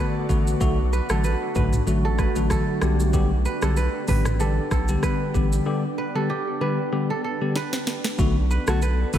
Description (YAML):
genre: afrobeats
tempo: 95 BPM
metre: 4/4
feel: swing 55% on 16ths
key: B minor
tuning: A4 = 440 Hz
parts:
  - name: bell-like tine electric piano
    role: accompaniment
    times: 0.0-9.2 s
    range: D3 to G4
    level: -26 LUFS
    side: left 3 dB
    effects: none
  - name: glassy FM pad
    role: sustained chords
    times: 0.0-9.2 s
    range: A3 to D5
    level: -30 LUFS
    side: right 1 dB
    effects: ensemble chorus, built-in reverb
  - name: kora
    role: riff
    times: 0.0-9.2 s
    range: G4 to B4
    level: -30 LUFS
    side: right 5 dB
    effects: tape echo
  - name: saturated sub bass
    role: bass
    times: 0.3-9.2 s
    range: A1 to B1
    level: -23 LUFS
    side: equal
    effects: none
  - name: afro-pop drum kit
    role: drums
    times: 0.3-9.2 s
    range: hi-hat, kick drum, rim click, shaker, snare drum, toms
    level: -26 LUFS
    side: equal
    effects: none
  - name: bright alto saxophone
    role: melody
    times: 8.7-9.2 s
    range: F#4 to A4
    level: -34 LUFS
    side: left 2 dB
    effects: tape echo
room: moderate church reverb, RT60 2.8 s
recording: dreamy mix soaked in reverb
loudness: -20 LUFS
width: side -10 dB against mid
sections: 0.0-8.2 A section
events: break 5.7-8.2; drum fill 7.6-8.2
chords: 0.0 Bm7; 2.8 G; 8.2 Bm7